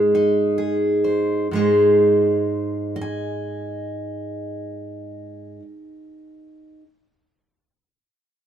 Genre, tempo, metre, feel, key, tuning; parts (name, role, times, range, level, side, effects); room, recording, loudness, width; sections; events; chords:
folk, solo fingerstyle acoustic guitar; 64 BPM; 4/4; rubato; Ab major; A4 = 440 Hz
fingerpicked steel-string acoustic guitar; solo; 0.0-6.9 s; Ab2 to Ab5; -19 LUFS; right 1 dB
light reverb; minimal, uncompressed stereo recording; -18 LUFS; side -9 dB against mid
0.0-1.5 A section; 1.5-5.3 B section
slowing down 0.0-1.5
0.0 Ab